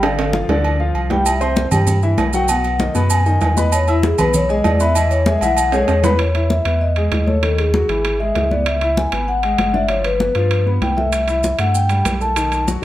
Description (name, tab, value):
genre	Afro-Cuban jazz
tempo	195 BPM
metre	4/4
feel	straight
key	unclear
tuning	A4 = 440 Hz
part	vibraphone with soft mallets	melody	0.0-12.6 s	E4 to A5	-19 LUFS	left 2 dB	none
part	warm concert grand piano	accompaniment	0.0-12.8 s	B2 to E6	-22 LUFS	left 1 dB	none
part	pure sine sub bass	bass	0.0-12.8 s	G1 to G2	-19 LUFS	equal	none
part	congas	percussion	0.0-12.8 s	none	-23 LUFS	left 2 dB	none
part	timbales and agogo bells	percussion	0.0-12.7 s	none	-23 LUFS	right 4 dB	none
part	maracas	percussion	1.3-6.2, 11.1-12.8 s	none	-28 LUFS	right 8 dB	none
room	moderate large studio reverb, RT60 1.4 s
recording	none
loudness	-14 LUFS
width	side -14 dB against mid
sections	0.0-6.2 A section; 6.2-12.8 B section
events	vibraphone solo 0.0-6.2; drum fill 0.0-1.3, 5.7-6.2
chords	0.0 G5; 1.3 C; 2.5 B6; 3.7 E6; 7.4 F#m13; 8.0 E6/G#; 8.7 C#m7; 9.9 G7; 11.1 C6